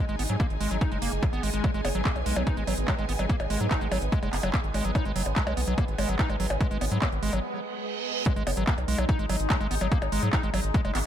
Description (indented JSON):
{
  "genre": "psychedelic trance",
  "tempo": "145 BPM",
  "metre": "4/4",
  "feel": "straight",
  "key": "G# minor",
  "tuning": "A4 = 442 Hz",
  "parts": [
    { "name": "bubbling stepped-filter texture", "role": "sustained chords", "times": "0.0-11.1 s", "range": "G#3 to D#4", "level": "-35 LUFS", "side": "right 2 dB", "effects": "chorus, built-in reverb, sidechain pumping" },
    { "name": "overdriven acid bass", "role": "riff", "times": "0.0-11.0 s", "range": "F#3 to D#4", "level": "-32 LUFS", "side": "equal", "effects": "auto-pan, sidechain pumping, digital delay" },
    { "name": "rich studio string section", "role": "texture", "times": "0.0-7.4 s", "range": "D#4 to G#5", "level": "-41 LUFS", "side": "left 2 dB", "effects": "sidechain pumping" },
    { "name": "round analog bass", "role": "bass", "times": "0.1-11.0 s", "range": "F#1 to G#2", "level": "-29 LUFS", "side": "equal", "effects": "tube saturation" },
    { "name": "techno drum kit", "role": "drums", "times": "0.1-11.0 s", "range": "handclaps, hi-hat, percussion blips", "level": "-32 LUFS", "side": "equal", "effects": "none" },
    { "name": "electronic kick drum", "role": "drums", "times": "0.4-10.8 s", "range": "none", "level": "-26 LUFS", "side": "equal", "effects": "none" },
    { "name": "reverse cymbal", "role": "sound effects", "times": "7.6-8.3 s", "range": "none", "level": "-33 LUFS", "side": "right 8 dB", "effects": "none" }
  ],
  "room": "digital ambience",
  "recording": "none",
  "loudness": "-24 LUFS",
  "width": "side -10 dB against mid",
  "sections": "0.0-8.3 A section; 8.3-11.1 B section",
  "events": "fade-in on string section 0.0-8.3; break 7.4-8.3; reverse cymbal 7.6-8.3; drop 8.3-11.1",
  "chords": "0.0 G#5",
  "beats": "0.40 0.81 1.23 | 1.64 2.05 2.47 2.88 | 3.29 3.71 4.12 4.54 | 4.95 5.36 5.78 6.19 | 6.61 7.02 7.43 7.85 | 8.26 8.67 9.09 9.50 | 9.92 10.33 10.74"
}